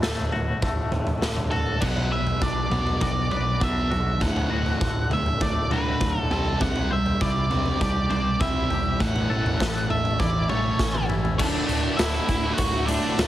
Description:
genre	quiet-loud alternative rock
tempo	100 BPM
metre	4/4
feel	straight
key	D major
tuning	A4 = 440 Hz
part	twangy electric guitar	arpeggios	0.0-13.3 s	D2 to C5	-32 LUFS	left 4 dB	tremolo, plate reverb
part	overdriven picked electric bass	bass	0.0-13.3 s	D1 to C2	-29 LUFS	equal	none
part	raw garage drum kit	drums	0.0-13.3 s	crash cymbal, hi-hat, kick drum, snare drum, toms	-26 LUFS	equal	none
part	octave-fuzz lead guitar	melody	1.5-13.3 s	D4 to F#5	-28 LUFS	right 1 dB	distortion, plate reverb
part	thick fuzz guitar	riff	1.8-13.3 s	D2 to F#4	-28 LUFS	right 1 dB	distortion
room	light reverb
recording	heavily compressed radio sound, multiband compression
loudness	-21 LUFS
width	side -13 dB against mid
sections	0.0-1.8 A section; 1.8-11.4 B section; 11.4-13.3 C section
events	drum fill 10.8-11.4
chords	0.0 D; 1.8 Bm; 4.2 D; 6.3 C; 9.0 A; 11.4 D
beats	0.02 0.62 1.22 | 1.82 2.42 3.01 3.61 | 4.21 4.81 5.41 6.01 | 6.60 7.20 7.80 8.40 | 9.00 9.60 10.20 10.79 | 11.39 11.99 12.59 13.18

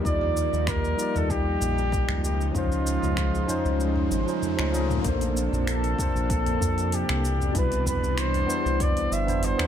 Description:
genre	sunset chillout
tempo	96 BPM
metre	4/4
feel	swing 53% on 16ths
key	Bb major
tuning	A4 = 445 Hz
part	bright tine electric piano	accompaniment	0.0-9.7 s	B2 to Eb5	-30 LUFS	moving between left 5 dB and right 5 dB	auto-pan, digital delay
part	lush unison pad	sustained chords	0.0-9.7 s	B2 to C5	-32 LUFS	left 1 dB	chorus
part	round analog bass	bass	0.0-9.7 s	G1 to F2	-27 LUFS	equal	none
part	warm flugelhorn	melody	0.1-9.7 s	F4 to E5	-29 LUFS	equal	tape echo
part	electronic kick drum	drums	0.1-8.9 s	none	-29 LUFS	equal	none
part	smooth R&B drum kit	drums	0.1-9.7 s	finger snaps, hi-hat, shaker, toms	-32 LUFS	right 1 dB	none
part	riser	sound effects	3.0-5.0 s	none	-37 LUFS	right 1 dB	none
room	light reverb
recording	none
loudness	-22 LUFS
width	side -9 dB against mid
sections	0.0-5.0 A section; 5.0-9.7 B section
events	riser 3.0-5.0; kick drops out 3.8-5.0; drum fill 4.7-5.0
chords	0.0 Ebmaj9; 2.2 Dbmaj9; 5.0 Bbmaj9; 7.2 Cmaj9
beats	| 0.05 0.67 1.30 1.92 | 2.55 3.17 3.80 4.42 | 5.05 5.67 6.30 6.92 | 7.55 8.17 8.80 9.42

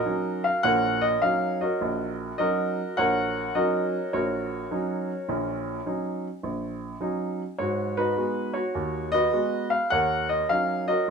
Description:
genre	solo jazz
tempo	104 BPM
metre	4/4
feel	swing 67% on 8ths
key	Eb minor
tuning	A4 = 436 Hz
part	clear baby grand piano	solo	0.0-11.1 s	Bb1 to Gb5	-24 LUFS	equal	none
room	moderate large studio reverb, RT60 1.0 s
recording	minimal, uncompressed stereo recording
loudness	-24 LUFS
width	side -5 dB against mid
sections	0.0-11.1 A section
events	none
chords	0.0 Ebm7; 7.6 Abm7; 9.9 Ebm7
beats	0.05 | 0.63 1.21 1.79 2.38 | 2.96 3.54 4.11 4.69 | 5.27 5.85 6.43 7.01 | 7.59 8.17 8.74 9.32 | 9.90 10.48 11.06

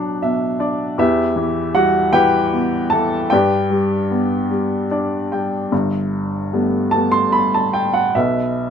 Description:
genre	classical, lyrical solo piano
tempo	50 BPM (dotted quarters)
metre	6/8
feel	uneven beats, rubato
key	G major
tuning	A4 = 440 Hz
part	warm upright piano	solo	0.0-8.7 s	G1 to C6	-16 LUFS	equal	none
room	moderate studio reverb, RT60 0.5 s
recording	none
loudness	-15 LUFS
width	side -7 dB against mid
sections	0.0-5.7 A section; 5.7-8.7 B section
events	upright piano fill 0.0-1.0, 4.5-5.7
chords	0.0 Bm; 1.0 Em; 3.3 G; 5.7 Gadd9; 8.1 Bsus4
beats	| 0.98 2.13 | 3.31 4.50 | 5.71 6.94 | 8.15

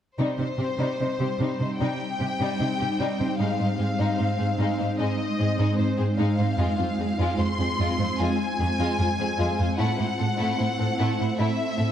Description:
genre	cinematic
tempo	75 BPM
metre	4/4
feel	straight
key	unclear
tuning	A4 = 440 Hz
part	rich studio violin section	melody	0.2-11.9 s	C5 to C6	-30 LUFS	left 4 dB	none
part	warm symphonic violin section	second line	0.2-11.9 s	G3 to C5	-31 LUFS	left 3 dB	none
part	granular cloud pad	sustained chords	1.1-11.9 s	G3 to C5	-28 LUFS	equal	built-in reverb
part	clear symphonic cello section	bass	0.2-11.9 s	F2 to C3	-26 LUFS	right 2 dB	none
room	moderate scoring stage reverb, RT60 1.7 s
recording	dark, warm production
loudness	-22 LUFS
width	side -10 dB against mid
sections	0.2-11.9 A section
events	none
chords	0.2 Cm; 3.4 Ab; 6.6 Fm; 9.8 Am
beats	| 0.19 0.99 1.79 2.59 | 3.39 4.19 4.99 5.79 | 6.59 7.39 8.19 8.99 | 9.79 10.59 11.39

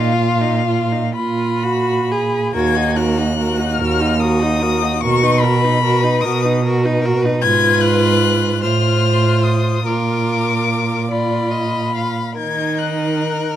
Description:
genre	classical, slow romantic movement for string quartet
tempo	49 BPM (dotted quarters)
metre	6/8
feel	uneven beats, rubato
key	Eb minor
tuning	A4 = 439 Hz
part	warm violin	melody	0.0-13.6 s	F5 to Ab6	-20 LUFS	left 6 dB	none
part	rich violin	second line	0.0-13.6 s	F4 to F5	-23 LUFS	left 4 dB	none
part	rich viola	accompaniment	0.0-13.6 s	D#4 to Ab4	-21 LUFS	right 2 dB	none
part	dark cello	bass	0.0-13.6 s	Eb2 to Eb3	-18 LUFS	right 3 dB	none
room	light reverb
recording	close, detailed microphones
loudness	-14 LUFS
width	side -11 dB against mid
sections	0.0-2.5 A section; 2.5-13.6 B section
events	none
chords	0.0 Bbsus4; 1.2 Bb5; 2.5 Ebm; 5.0 Bmaj7; 7.4 Fdim/Ab; 8.6 F/A; 9.9 Bb; 12.4 Ebm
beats	1.16 | 2.55 3.79 | 5.02 6.22 | 7.42 8.62 | 9.85 11.10 | 12.36

